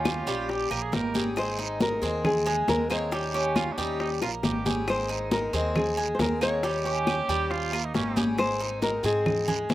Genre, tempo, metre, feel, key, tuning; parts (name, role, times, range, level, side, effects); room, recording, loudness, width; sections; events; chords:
latin, Cuban son and guajira; 137 BPM; 4/4; straight; Ab major; A4 = 440 Hz
nylon-string guitar; melody; 0.0-9.7 s; Ab4 to Db5; -28 LUFS; left 2 dB; slapback echo
clear trumpet; second line; 0.0-8.3 s; Db4 to Bb4; -32 LUFS; right 4 dB; slapback echo
picked swing-style acoustic guitar; accompaniment; 0.0-9.7 s; Eb3 to Ab4; -34 LUFS; left 3 dB
Cuban tres; arpeggios; 0.0-9.7 s; G3 to Ab4; -32 LUFS; right 2 dB; slapback echo
upright bass; bass; 0.0-9.7 s; Ab1 to Ab2; -34 LUFS; right 1 dB
bongos; percussion; 0.1-9.7 s; -34 LUFS; left 4 dB
claves; percussion; 0.1-9.5 s; -36 LUFS; left 2 dB
congas; percussion; 0.1-9.7 s; -30 LUFS; equal
guiro; percussion; 0.1-9.7 s; -36 LUFS; right 6 dB
little or no reverb; recorded outdoors, with no room sound; -24 LUFS; side -15 dB against mid
0.0-9.7 A section
drum fill 4.2-4.9
0.0 Eb7; 1.4 Abadd9; 3.1 Eb7; 4.9 Abadd9; 6.6 Eb7; 8.4 Ab